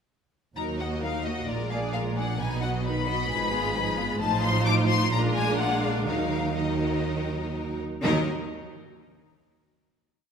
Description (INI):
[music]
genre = quick classical-period movement for string orchestra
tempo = 121-133 BPM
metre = 4/4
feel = straight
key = Eb minor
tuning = A4 = 440 Hz
[part]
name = clear studio violin section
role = melody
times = 0.6-8.3 s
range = D5 to D6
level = -30 LUFS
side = left 6 dB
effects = none
[part]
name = clear symphonic violin section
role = second line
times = 0.6-8.3 s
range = Eb4 to Eb5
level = -33 LUFS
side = left 3 dB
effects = none
[part]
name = warm studio viola section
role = accompaniment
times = 0.6-8.3 s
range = D#3 to Gb4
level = -30 LUFS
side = right 2 dB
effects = none
[part]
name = rich symphonic cello section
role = bass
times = 0.6-8.3 s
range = Eb2 to Eb3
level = -32 LUFS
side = right 3 dB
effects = none
[part]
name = rich symphonic double bass section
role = bass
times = 0.6-8.3 s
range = Ab1 to Eb2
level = -31 LUFS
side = right 2 dB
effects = none
[sound]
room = wet scoring stage reverb, RT60 1.9 s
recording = minimal, uncompressed stereo recording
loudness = -24 LUFS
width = side -7 dB against mid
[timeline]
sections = 0.6-8.0 theme; 8.0-10.0 final chord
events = none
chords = 0.6 Ebm; 1.5 Bb7; 2.4 B; 3.3 Fm7b5/Ab; 4.2 F7/A; 5.1 Bb7; 6.1 Ebm